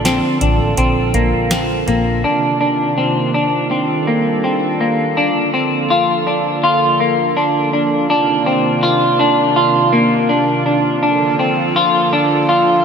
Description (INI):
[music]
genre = dream pop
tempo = 82 BPM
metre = 4/4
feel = straight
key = Bb major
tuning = A4 = 439 Hz
[part]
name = warm analog pad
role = sustained chords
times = 0.0-12.8 s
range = C3 to A4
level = -19 LUFS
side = right 2 dB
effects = chorus
[part]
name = semi-hollow electric guitar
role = arpeggios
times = 0.0-12.8 s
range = Bb3 to F4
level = -14 LUFS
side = left 1 dB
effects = lush chorus, ping-pong delay
[part]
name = vintage muted fingered electric bass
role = bass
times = 0.0-2.2 s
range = A1 to Bb1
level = -21 LUFS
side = equal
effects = none
[part]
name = booming analog drum machine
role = drums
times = 0.1-2.0 s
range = hi-hat, kick drum, snare drum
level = -19 LUFS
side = equal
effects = gated reverb
[sound]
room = wet lush hall reverb, RT60 2.8 s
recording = bright 1980s-style digital production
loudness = -13 LUFS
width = side -6 dB against mid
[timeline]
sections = 0.0-5.2 A section; 5.2-12.8 B section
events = none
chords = 0.0 Bbmaj7; 2.2 Cm11; 3.7 F13; 5.2 Bbmaj7; 8.1 Cm11; 11.0 Bbmaj7